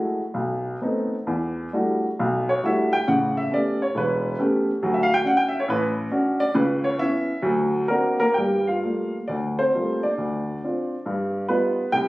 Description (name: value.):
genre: solo jazz.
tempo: 135 BPM.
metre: 4/4.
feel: swing 68% on 8ths, uneven beats, rubato.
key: unclear.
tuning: A4 = 444 Hz.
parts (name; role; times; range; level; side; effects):
warm upright piano; solo; 0.0-12.1 s; E1 to G5; -21 LUFS; equal; none.
room: moderate large studio reverb, RT60 1.3 s.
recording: recorded on a phone in the room, studio ambience.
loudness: -21 LUFS.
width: side -19 dB against mid.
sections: 0.0-8.4 A section; 8.4-12.1 B section.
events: upright piano solo 0.0-8.4.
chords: 0.3 B7b9; 1.3 Em11; 3.1 A9; 4.8 Dmaj7; 6.6 C#m7; 7.4 Daug7; 8.4 Gm9; 10.2 Dm7; 11.1 G7b13.